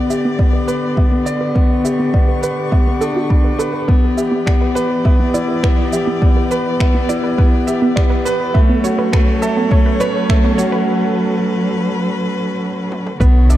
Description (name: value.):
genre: piano and strings electronica.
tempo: 103 BPM.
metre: 4/4.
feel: straight.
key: unclear.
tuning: A4 = 445 Hz.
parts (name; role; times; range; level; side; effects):
rich string quartet; sustained chords; 0.0-13.6 s; D3 to C#6; -22 LUFS; equal; sidechain pumping.
bright concert grand piano; riff; 0.0-13.6 s; A3 to D5; -18 LUFS; left 1 dB; tape echo.
warbly dusty pluck; arpeggios; 0.1-13.6 s; B3 to B5; -23 LUFS; right 3 dB; chorus, sidechain pumping, tape echo.
minimal click drum kit; drums; 0.1-13.6 s; finger snaps, shaker, toms; -29 LUFS; right 1 dB; high-pass filter on perc, high-pass filter on snare, high-pass filter on toms.
electronic kick drum; drums; 0.4-13.3 s; none; -13 LUFS; equal; none.
dark detuned saw bass; bass; 13.2-13.6 s; B1; -10 LUFS; equal; sidechain pumping.
room: moderate lush hall reverb, RT60 2.0 s.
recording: dark, warm production.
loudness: -13 LUFS.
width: side -13 dB against mid.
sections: 0.0-13.2 A section.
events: build-up 0.0-13.2; filter sweep on synth arpeggio sound 0.0-13.2; break 10.9-13.2; drum fill 12.9.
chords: 0.0 G; 3.9 Em7; 8.6 F#m.